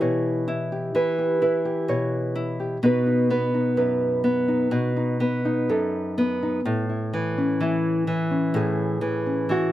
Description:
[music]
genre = folk, solo fingerstyle acoustic guitar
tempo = 63 BPM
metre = 4/4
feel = straight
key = A major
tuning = A4 = 440 Hz
[part]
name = nylon-string guitar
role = solo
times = 0.0-9.7 s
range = F#2 to C#5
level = -21 LUFS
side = equal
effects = none
[sound]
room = light reverb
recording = none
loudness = -21 LUFS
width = side -14 dB against mid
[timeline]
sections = 0.0-6.6 A section; 6.6-9.7 B section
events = none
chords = 0.0 Em; 2.8 B; 6.6 Amaj7

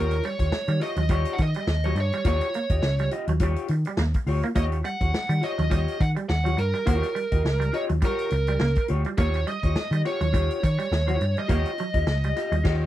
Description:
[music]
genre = funk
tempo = 104 BPM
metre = 4/4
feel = swing 56% on 16ths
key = Eb mixolydian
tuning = A4 = 439 Hz
[part]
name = biting lead guitar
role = melody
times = 0.0-12.9 s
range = Bb4 to Gb5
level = -29 LUFS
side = right 2 dB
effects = overdrive
[part]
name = mellow electric guitar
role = accompaniment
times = 0.0-12.8 s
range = F4 to Eb5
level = -31 LUFS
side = left 5 dB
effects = analog chorus
[part]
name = clean electric guitar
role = riff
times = 0.0-12.6 s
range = Gb3 to Bb3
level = -32 LUFS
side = right 4 dB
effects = analog chorus
[part]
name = vintage muted picked electric bass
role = bass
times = 0.0-12.8 s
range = Db2 to Eb3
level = -24 LUFS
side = equal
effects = none
[part]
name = swinging big-band drum kit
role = drums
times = 0.1-12.8 s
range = crash cymbal, hi-hat, kick drum, snare drum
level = -27 LUFS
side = equal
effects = none
[sound]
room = little or no reverb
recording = dry, close 1970s-style studio recording, vinyl crackle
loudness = -22 LUFS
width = side -13 dB against mid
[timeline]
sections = 0.0-12.9 A section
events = band accent 12.6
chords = 0.0 Eb9

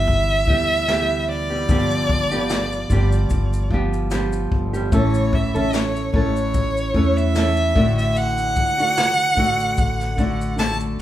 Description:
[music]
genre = acoustic pop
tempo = 74 BPM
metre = 4/4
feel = swing 55% on 16ths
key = G major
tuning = A4 = 440 Hz
[part]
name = clear violin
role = melody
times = 0.0-11.0 s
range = C#5 to A5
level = -21 LUFS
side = right 1 dB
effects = none
[part]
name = nylon-string guitar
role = accompaniment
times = 0.0-11.0 s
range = G2 to A4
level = -22 LUFS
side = right 1 dB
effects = none
[part]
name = upright bass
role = bass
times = 0.0-11.0 s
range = G1 to E2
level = -23 LUFS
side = equal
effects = none
[part]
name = jazz brush drum kit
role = drums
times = 0.1-11.0 s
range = kick drum, shaker, snare drum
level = -24 LUFS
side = left 1 dB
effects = none
[sound]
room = moderate large studio reverb, RT60 1.2 s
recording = band playing live in one room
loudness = -17 LUFS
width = side -12 dB against mid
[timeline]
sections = 0.0-11.0 A section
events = none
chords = 0.0 G6; 1.7 G7; 4.9 A; 7.8 D/A

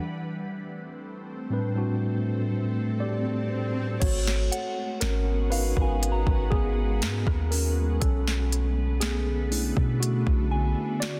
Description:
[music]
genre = contemporary R&B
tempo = 60 BPM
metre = 4/4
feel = straight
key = G# dorian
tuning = A4 = 438 Hz
[part]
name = mellow tine electric piano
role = accompaniment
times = 0.0-11.2 s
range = A2 to D5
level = -32 LUFS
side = equal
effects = none
[part]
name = ethereal airy pad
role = sustained chords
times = 0.0-11.2 s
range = D3 to A4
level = -37 LUFS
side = equal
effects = ensemble chorus, built-in reverb, phaser
[part]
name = swell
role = sound effects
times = 2.8-4.0 s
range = none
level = -41 LUFS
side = equal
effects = none
[part]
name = warm 808-style bass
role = bass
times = 4.0-10.7 s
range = G#1 to B2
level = -28 LUFS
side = equal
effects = none
[part]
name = smooth R&B drum kit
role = drums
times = 4.0-11.2 s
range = crash cymbal, hi-hat, kick drum, rim click, snare drum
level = -30 LUFS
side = equal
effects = overdrive
[part]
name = soft synth bell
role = texture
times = 4.5-11.2 s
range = E#5 to A#5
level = -39 LUFS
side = equal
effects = chorus, tremolo, digital delay
[sound]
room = light reverb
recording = dense, heavily limited modern master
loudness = -26 LUFS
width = mono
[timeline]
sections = 0.0-4.0 A section; 4.0-11.2 B section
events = break 0.0-4.0; swell 2.8-4.0; tine electric piano solo 4.0-11.2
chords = 0.0 Am11; 4.0 G#m11; 8.0 Bm11

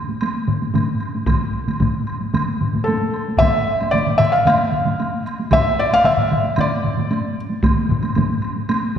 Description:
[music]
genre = japanese traditional, taiko drum ensemble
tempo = 113 BPM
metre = 4/4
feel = straight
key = unclear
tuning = A4 = 440 Hz
[part]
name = taiko ensemble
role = percussion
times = 0.1-8.8 s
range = none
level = -23 LUFS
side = right 1 dB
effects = none
[part]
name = woodblock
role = percussion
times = 0.2-8.8 s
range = none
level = -29 LUFS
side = right 2 dB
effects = none
[part]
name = solo taiko drums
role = percussion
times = 0.5-9.0 s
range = none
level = -25 LUFS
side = right 3 dB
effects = none
[part]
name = taiko ensemble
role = percussion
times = 0.5-9.0 s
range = none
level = -25 LUFS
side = left 3 dB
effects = none
[part]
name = taiko ensemble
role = percussion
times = 1.3-7.8 s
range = none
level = -24 LUFS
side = right 1 dB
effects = none
[part]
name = felt-muted upright piano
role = melody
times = 2.8-7.3 s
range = A4 to F5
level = -17 LUFS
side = left 1 dB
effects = none
[sound]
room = wet scoring stage reverb, RT60 2.0 s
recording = recorded in a church or concert hall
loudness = -16 LUFS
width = side -8 dB against mid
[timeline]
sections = 0.0-9.0 A section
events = none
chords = none

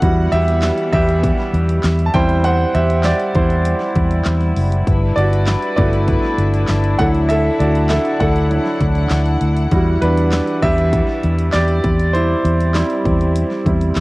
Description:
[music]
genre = piano-driven pop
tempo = 99 BPM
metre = 4/4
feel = straight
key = unclear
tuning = A4 = 440 Hz
[part]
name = clear concert grand piano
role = accompaniment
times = 0.0-14.0 s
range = F#3 to A5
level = -18 LUFS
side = right 2 dB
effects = cassette tape
[part]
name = dark studio string section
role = sustained chords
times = 0.0-14.0 s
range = D3 to F#5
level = -24 LUFS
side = left 2 dB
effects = cassette tape
[part]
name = vintage muted fingered electric bass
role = bass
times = 0.0-14.0 s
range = F#1 to E2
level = -16 LUFS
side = equal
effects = none
[part]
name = pop drum kit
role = drums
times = 0.0-14.0 s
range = handclaps, hi-hat, kick drum, snare drum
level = -21 LUFS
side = equal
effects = cassette tape
[sound]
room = little or no reverb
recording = home recording on cassette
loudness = -14 LUFS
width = side -21 dB against mid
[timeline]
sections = 0.0-14.0 A section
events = grand piano solo 0.0-14.0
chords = 0.0 Emadd9; 2.1 C/E; 4.9 G6; 7.0 Dadd9; 9.7 Emadd9; 11.8 C/E

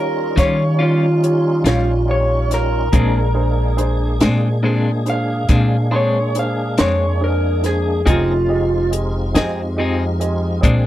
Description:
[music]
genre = slow blues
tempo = 47 BPM (dotted quarters)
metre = 12/8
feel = straight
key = unclear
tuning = A4 = 440 Hz
[part]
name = electric guitar through a small old amp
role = melody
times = 0.0-8.9 s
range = F4 to F5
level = -20 LUFS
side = right 1 dB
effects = none
[part]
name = warm upright piano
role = accompaniment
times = 0.0-10.9 s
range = D4 to C6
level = -26 LUFS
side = right 3 dB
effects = none
[part]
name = tonewheel organ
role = sustained chords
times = 0.0-10.9 s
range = G3 to Ab4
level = -26 LUFS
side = left 1 dB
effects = overdrive, chorus vibrato, slow rotary speaker
[part]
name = upright bass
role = bass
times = 0.0-10.9 s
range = F1 to Eb3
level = -18 LUFS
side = equal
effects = none
[part]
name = clean electric guitar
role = accompaniment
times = 0.4-10.9 s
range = Bb2 to Ab4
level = -21 LUFS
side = left 4 dB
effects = tremolo
[part]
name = compact cocktail drum kit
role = drums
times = 0.4-10.8 s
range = hi-hat, kick drum, snare drum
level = -17 LUFS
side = equal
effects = none
[sound]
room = little or no reverb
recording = dry, close 1970s-style studio recording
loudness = -15 LUFS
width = side -13 dB against mid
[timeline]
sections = 0.0-10.9 A section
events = none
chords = 0.0 Eb9; 2.9 Bb9; 8.1 Fm7

